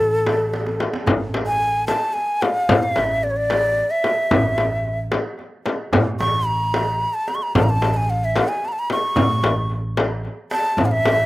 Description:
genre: Persian modal ensemble.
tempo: 74 BPM (dotted quarters).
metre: 6/8.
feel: straight.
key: A dastgah chahargah.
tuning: A4 = 440 Hz.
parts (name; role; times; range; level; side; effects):
breathy reedy ney; melody; 0.0-11.3 s; A4 to C#6; -20 LUFS; equal; slapback echo.
santur; second line; 0.0-2.5 s; A4 to C#5; -35 LUFS; right 2 dB; none.
upright bass; bass; 0.0-11.3 s; A1 to A2; -25 LUFS; equal; none.
tombak; percussion; 0.0-11.2 s; none; -25 LUFS; right 1 dB; slapback echo.
frame drum; percussion; 0.3-11.2 s; none; -22 LUFS; left 3 dB; none.
room: little or no reverb.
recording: recorded outdoors, with no room sound.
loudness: -18 LUFS.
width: side -17 dB against mid.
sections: 0.0-1.1 A section; 1.1-11.3 B section.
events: drum fill 0.5-1.1.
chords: none.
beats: 0.27 | 1.08 1.89 | 2.70 3.51 | 4.32 5.12 | 5.93 6.74 | 7.55 8.36 | 9.17 9.97 | 10.78.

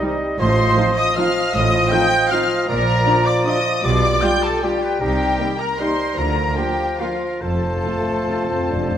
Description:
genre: classical.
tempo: 132-171 BPM.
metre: 3/4.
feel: rubato.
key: Bb major.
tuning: A4 = 443 Hz.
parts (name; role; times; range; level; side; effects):
clear oboe; second line; 0.0-9.0 s; Bb4 to Eb5; -28 LUFS; right 1 dB; none.
warm clarinet; second line; 0.0-9.0 s; Eb4 to F4; -27 LUFS; left 3 dB; none.
mellow bassoon; accompaniment; 0.0-9.0 s; F3 to G3; -25 LUFS; right 1 dB; none.
warm studio viola section; accompaniment; 0.0-8.4 s; F3 to F4; -29 LUFS; right 1 dB; none.
bright trombone section; sustained chords; 0.0-8.5 s; C3 to G3; -33 LUFS; right 2 dB; none.
warm French horn section; sustained chords; 0.0-9.0 s; A3 to F4; -29 LUFS; left 2 dB; none.
rich symphonic violin section; melody; 0.4-9.0 s; F5 to G6; -26 LUFS; left 4 dB; none.
silver concert flute; second line; 0.4-9.0 s; F5 to G6; -25 LUFS; left 1 dB; none.
warm symphonic violin section; second line; 0.4-9.0 s; F4 to G5; -28 LUFS; left 1 dB; none.
warm trumpet; stabs; 0.4-9.0 s; F4 to G5; -25 LUFS; right 1 dB; none.
rich studio double bass section; bass; 0.4-9.0 s; F1 to D2; -25 LUFS; right 2 dB; none.
rich symphonic cello section; bass; 0.4-9.0 s; F2 to D3; -26 LUFS; right 2 dB; none.
timpani; percussion; 7.4-9.0 s; F2; -29 LUFS; left 2 dB; none.
room: wet recital hall reverb, RT60 1.6 s.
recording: none.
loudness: -16 LUFS.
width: side -9 dB against mid.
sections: 0.0-9.0 A section.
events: timpani fill 7.4-9.0.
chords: 0.4 F7/A; 2.7 Bb; 3.8 G7/B; 5.0 Cm7; 6.2 Bb/D; 7.4 F.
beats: 0.03 | 0.39 0.77 1.17 | 1.54 1.92 2.31 | 2.69 3.07 3.46 | 3.84 4.23 4.64 | 5.02 5.40 5.80 | 6.18 6.58 7.00 | 7.42 7.86 8.30 | 8.71.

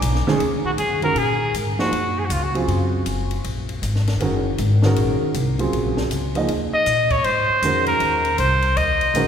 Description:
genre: modal jazz.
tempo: 158 BPM.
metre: 4/4.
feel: swing 64% on 8ths.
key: Eb dorian.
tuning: A4 = 439 Hz.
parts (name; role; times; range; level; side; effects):
upright bass; bass; 0.0-9.3 s; Gb1 to Bb2; -22 LUFS; left 1 dB; none.
compact cocktail drum kit; drums; 0.0-9.3 s; hi-hat, kick drum, ride cymbal, snare drum; -31 LUFS; left 3 dB; none.
clear upright piano; accompaniment; 0.3-9.3 s; Db3 to Eb5; -23 LUFS; right 2 dB; none.
clear trumpet; melody; 0.7-2.5, 6.7-9.3 s; F4 to Eb5; -19 LUFS; equal; none.
room: wet church reverb, RT60 3.5 s.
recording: recorded in a church or concert hall.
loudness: -18 LUFS.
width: side -8 dB against mid.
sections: 0.4-9.3 A section.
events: none.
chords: 0.4 Ebm11; 6.5 Abadd9.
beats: 0.02 | 0.40 0.78 1.16 1.54 | 1.92 2.30 2.68 3.06 | 3.44 3.82 4.20 4.58 | 4.96 5.34 5.72 6.10 | 6.48 6.86 7.24 7.62 | 8.00 8.38 8.76 9.14.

